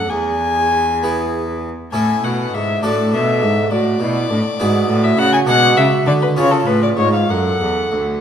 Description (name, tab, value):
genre	classical, baroque-style sonata movement with continuo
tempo	66 BPM (dotted quarters)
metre	6/8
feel	rubato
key	unclear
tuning	A4 = 440 Hz
part	warm violin	melody	0.0-8.2 s	A4 to G#5	-18 LUFS	left 4 dB	none
part	mellow baroque flute	second line	0.0-8.2 s	D4 to A4	-21 LUFS	right 6 dB	none
part	harpsichord	accompaniment	0.0-8.2 s	D2 to A4	-21 LUFS	equal	none
part	rich cello	bass	0.0-8.2 s	D2 to D3	-20 LUFS	right 1 dB	none
room	wet recital hall reverb, RT60 1.4 s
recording	none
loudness	-14 LUFS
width	side -8 dB against mid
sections	0.0-8.2 A section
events	none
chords	0.1 E; 1.9 A; 2.8 D/A; 3.7 E7/A; 5.5 G#dim/B; 6.4 C#; 7.3 F#m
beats	| 0.09 1.01 | 1.92 2.83 | 3.72 4.60 | 5.47 6.37 | 7.29